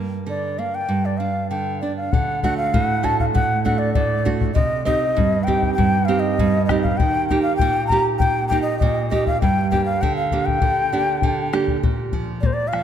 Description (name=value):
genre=andean folk, Andean ensemble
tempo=99 BPM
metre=2/4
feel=straight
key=G minor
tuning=A4 = 436 Hz
part: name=nylon-string guitar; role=accompaniment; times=0.0-12.8 s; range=G2 to G4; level=-21 LUFS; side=right 4 dB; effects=none
part: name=large quena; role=melody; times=0.3-12.8 s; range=C5 to Bb5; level=-22 LUFS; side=left 1 dB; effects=none
part: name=bombo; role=percussion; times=2.1-12.8 s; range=none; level=-23 LUFS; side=left 3 dB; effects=none
room=moderate concert hall reverb, RT60 2.1 s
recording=none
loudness=-17 LUFS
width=side -9 dB against mid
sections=0.0-2.1 A section; 2.1-11.8 B section; 11.8-12.8 A section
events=speeding up 0.0-12.8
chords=0.0 Gm; 0.9 G5; 2.1 D; 4.6 Cm; 7.0 Eb; 9.4 Gm; 11.8 Bb5